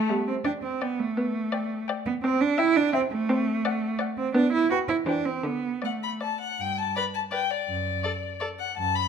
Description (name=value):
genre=quick classical-period movement for string quartet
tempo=167 BPM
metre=3/4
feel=rubato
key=G major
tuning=A4 = 440 Hz
part: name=rich violin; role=melody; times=0.0-9.1 s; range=D5 to B5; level=-30 LUFS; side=left 9 dB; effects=none
part: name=rich viola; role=accompaniment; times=0.0-8.5 s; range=D3 to B4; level=-28 LUFS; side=equal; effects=none
part: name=rich cello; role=bass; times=0.0-9.1 s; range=F#2 to F#4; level=-26 LUFS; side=right 4 dB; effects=none
part: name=warm violin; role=second line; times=0.4-8.5 s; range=B4 to E5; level=-34 LUFS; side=left 5 dB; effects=none
room=moderate recital hall reverb, RT60 1.4 s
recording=none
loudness=-24 LUFS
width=side -7 dB against mid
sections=0.0-6.6 A section; 6.6-9.1 B section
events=none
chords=0.1 G; 2.2 C; 3.3 D7/A; 4.4 G/B; 5.1 C/E; 5.5 D; 6.6 G; 7.7 D/F#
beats=| 0.10 0.46 0.82 | 1.18 1.53 1.89 | 2.24 2.59 2.94 | 3.29 3.65 4.00 | 4.35 4.71 5.08 | 5.45 5.84 6.22 | 6.60 6.96 7.32 | 7.68 8.04 8.41 | 8.77